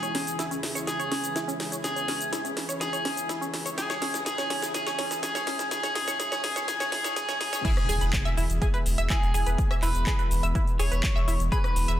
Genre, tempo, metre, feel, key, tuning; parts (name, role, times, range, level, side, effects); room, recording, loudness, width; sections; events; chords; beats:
progressive house; 124 BPM; 4/4; straight; E major; A4 = 440 Hz
electric guitar at the edge of break-up; melody; 0.0-12.0 s; G#4 to C#5; -30 LUFS; equal; vintage 12-bit sampler grit, sidechain pumping, dub echo
lush unison pad; sustained chords; 0.0-12.0 s; E2 to F#4; -38 LUFS; equal; chorus, sidechain pumping
tight sequenced synth; arpeggios; 0.0-11.9 s; C#4 to E6; -34 LUFS; right 1 dB; chorus, cassette tape, sidechain pumping, dub echo
house drum kit; drums; 0.0-12.0 s; crash cymbal, handclaps, hi-hat, rim click, shaker, snare drum; -32 LUFS; equal; overdrive, high-pass filter on snare, sidechain pumping on hats, high-pass filter on hats, sidechain pumping on perc, high-pass filter on perc, sidechain pumping on cymbals, high-pass filter on cymbals, high-pass filter on room
soft synth bell; second line; 7.6-12.0 s; G#5 to C#6; -39 LUFS; equal
electronic kick drum; drums; 7.6-11.6 s; -27 LUFS; equal; overdrive
impact; sound effects; 7.6-9.6 s; -34 LUFS; equal
saturated sub bass; bass; 7.9-12.0 s; E1; -26 LUFS; equal; tube saturation, sidechain pumping
moderate recital hall reverb, RT60 1.3 s, digital ambience; dense, heavily limited modern master, high-pass filter; -25 LUFS; side -12 dB against mid
0.0-7.6 A section; 7.6-12.0 B section
build-up 0.0-7.6; drum fill 0.0-7.6; drop 7.6-12.0; impact 7.6-9.6
0.0 C#m/E; 7.6 E
0.39 0.87 1.36 | 1.84 2.33 2.81 3.29 | 3.78 4.26 4.75 5.23 | 5.71 6.20 6.68 7.16 | 7.65 8.13 8.62 9.10 | 9.58 10.07 10.55 11.04 | 11.52